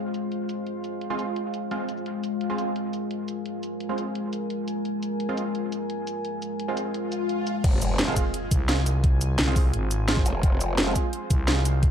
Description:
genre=dark technical drum and bass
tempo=172 BPM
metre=4/4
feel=straight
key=F minor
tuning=A4 = 442 Hz
part: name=deep dark ambient pad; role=sustained chords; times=0.0-11.9 s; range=Ab3 to Ab5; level=-30 LUFS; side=left 1 dB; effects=chorus, built-in reverb, sidechain pumping
part: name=orchestra-hit-like synth stab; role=stabs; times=0.0-11.6 s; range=Ab3 to F4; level=-33 LUFS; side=right 4 dB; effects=built-in reverb, dub echo
part: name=drum and bass drum kit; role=drums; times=0.1-11.9 s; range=crash cymbal, hi-hat, shaker, snare drum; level=-28 LUFS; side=equal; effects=overdrive, low-pass filter on hats, low-pass filter on snare, low-pass filter on perc, low-pass filter on cymbals, low-pass filter on room
part: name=swell and impact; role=sound effects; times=7.0-9.0 s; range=none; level=-30 LUFS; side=left 2 dB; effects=none
part: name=growl bass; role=bass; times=7.6-8.2, 10.3-10.9 s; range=F1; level=-27 LUFS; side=equal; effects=chorus, overdrive, sidechain pumping
part: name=electronic kick drum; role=drums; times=7.6-11.9 s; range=none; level=-22 LUFS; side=equal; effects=overdrive
part: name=growling FM bass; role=bass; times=8.5-11.9 s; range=Ab1 to C2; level=-24 LUFS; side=equal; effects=none
room=light reverb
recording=dark, warm production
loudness=-24 LUFS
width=side -8 dB against mid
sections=0.0-7.6 A section; 7.6-11.9 B section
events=swell 7.0-7.6; drop 7.6-11.9; impact 7.6-9.0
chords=0.0 Fm

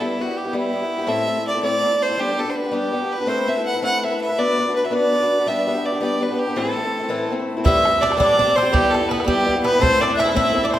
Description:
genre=celtic folk, Celtic jig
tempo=110 BPM (dotted quarters)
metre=6/8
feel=straight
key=A dorian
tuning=A4 = 439 Hz
part: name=clear fiddle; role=melody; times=0.0-10.8 s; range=E4 to F#5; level=-20 LUFS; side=right 1 dB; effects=slapback echo
part: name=picked swing-style acoustic guitar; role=accompaniment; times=0.0-10.8 s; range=A2 to B4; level=-22 LUFS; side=left 2 dB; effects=none
part: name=Irish bouzouki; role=second line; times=7.6-10.8 s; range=G3 to E4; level=-23 LUFS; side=right 2 dB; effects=none
part: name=mellow hollow tin whistle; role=second line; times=7.7-10.8 s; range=G5 to F#6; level=-24 LUFS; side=left 3 dB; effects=none
part: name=bodhran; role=percussion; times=7.7-10.8 s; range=none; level=-24 LUFS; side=right 1 dB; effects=none
room=wet recital hall reverb, RT60 1.6 s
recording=none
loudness=-17 LUFS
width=side -12 dB against mid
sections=0.0-7.6 A section; 7.6-10.8 A section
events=none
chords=0.0 Em/G; 1.1 Am; 2.2 G; 3.3 Amadd9; 4.4 Bm; 5.5 G; 6.6 Am; 7.6 Am7; 8.7 Em/G; 9.8 Am

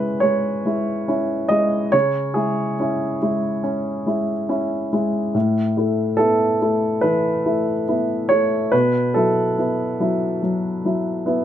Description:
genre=neoclassical minimalist piano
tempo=71 BPM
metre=4/4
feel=rubato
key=C# minor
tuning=A4 = 440 Hz
part: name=warm upright piano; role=solo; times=0.0-11.4 s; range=A2 to D#5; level=-18 LUFS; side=equal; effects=none
room=light reverb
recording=none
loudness=-18 LUFS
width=side -10 dB against mid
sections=0.0-11.4 A section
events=none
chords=0.0 C#m; 5.3 Asus2; 8.7 B7sus4

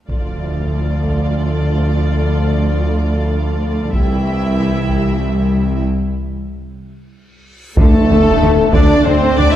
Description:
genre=cinematic, epic orchestral film score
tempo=94 BPM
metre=3/4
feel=straight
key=D minor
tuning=A4 = 441 Hz
part: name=rich studio violin section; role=melody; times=0.1-9.6 s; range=A4 to G5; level=-31 LUFS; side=left 4 dB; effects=none
part: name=rich symphonic violin section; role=second line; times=0.1-9.6 s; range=A4 to E5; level=-24 LUFS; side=left 1 dB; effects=none
part: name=clear symphonic viola section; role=accompaniment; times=0.1-9.6 s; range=A3 to F4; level=-25 LUFS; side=right 2 dB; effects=none
part: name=warm French horn section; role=sustained chords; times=0.1-9.5 s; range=E3 to A4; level=-19 LUFS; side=left 2 dB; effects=none
part: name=rich symphonic cello section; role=bass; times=0.1-9.5 s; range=C2 to D3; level=-20 LUFS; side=equal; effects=none
part: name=rich symphonic double bass section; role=bass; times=0.1-9.5 s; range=C2 to D2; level=-19 LUFS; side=right 1 dB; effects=none
part: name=solo taiko drums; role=drums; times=0.1-9.3 s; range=none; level=-18 LUFS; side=equal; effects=none
part: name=impact, reverse cymbal and sub drop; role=sound effects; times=0.1-2.0, 7.6-9.6 s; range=none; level=-27 LUFS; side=equal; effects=none
part: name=mellow tuba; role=bass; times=7.8-9.5 s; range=D2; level=-20 LUFS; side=right 2 dB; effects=none
part: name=tam-tam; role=percussion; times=7.8-9.6 s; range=none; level=-22 LUFS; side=equal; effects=none
room=wet concert hall reverb, RT60 2.1 s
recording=heard from further back in the room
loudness=-13 LUFS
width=side -11 dB against mid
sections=0.1-7.8 A section; 7.8-9.6 B section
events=impact 0.1-2.0, 7.8-9.6; break 5.9-7.8; drum fill 6.8-7.8; reverse cymbal 7.6; band accent 7.8-8.4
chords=0.1 Dm; 3.9 C; 7.8 D5

